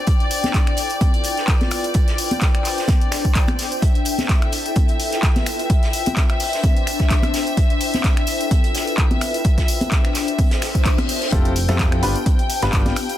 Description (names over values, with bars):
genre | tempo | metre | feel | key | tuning
piano house | 128 BPM | 4/4 | swing 55% on 16ths | unclear | A4 = 440 Hz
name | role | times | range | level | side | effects
clear studio violin section | sustained chords | 0.0-13.2 s | D5 to G5 | -28 LUFS | left 2 dB | sidechain pumping
ethereal airy pad | texture | 0.0-13.2 s | D4 to B5 | -26 LUFS | left 3 dB | ensemble chorus, built-in reverb, sidechain pumping
electronic kick drum | drums | 0.1-12.8 s | none | -17 LUFS | equal | overdrive
punchy analog drum machine | drums | 0.1-13.2 s | finger snaps, handclaps, hi-hat | -26 LUFS | left 1 dB | overdrive
vintage drum kit | drums | 0.1-13.2 s | hi-hat, snare drum | -33 LUFS | right 3 dB | sidechain pumping on hats, high-pass filter on hats, high-pass filter on snare, high-pass filter on room
tambourine and congas | percussion | 0.1-13.2 s | none | -28 LUFS | left 1 dB | none
reverse cymbal | sound effects | 10.6-11.3 s | none | -29 LUFS | left 6 dB | none
bright grand piano | riff | 11.3-12.9 s | B3 to B4 | -24 LUFS | left 1 dB | sidechain pumping, digital delay
hollow-body short-scale fingered electric bass | bass | 11.3-12.9 s | F1 to F2 | -21 LUFS | equal | tube saturation, sidechain pumping
room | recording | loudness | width
small room ambience | dense, heavily limited modern master | -16 LUFS | side -12 dB against mid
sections
0.0-13.2 A section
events
reverse cymbal 10.6-11.3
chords
0.1 Em7; 3.8 Emadd11; 11.3 Fmaj9; 12.0 G7